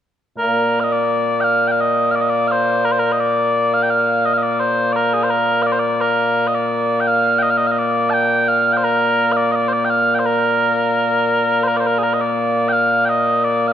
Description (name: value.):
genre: scottish traditional, Scottish pipe music.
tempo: 85 BPM.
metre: 2/4.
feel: straight.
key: Bb major.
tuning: A4 = 441 Hz.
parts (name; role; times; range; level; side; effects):
mellow small bagpipes; solo; 0.4-13.7 s; Bb2 to A5; -14 LUFS; equal; none.
room: moderate concert hall reverb, RT60 1.9 s.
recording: none.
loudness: -15 LUFS.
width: side -10 dB against mid.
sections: 0.4-11.7 A section; 11.7-13.7 A section.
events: none.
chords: none.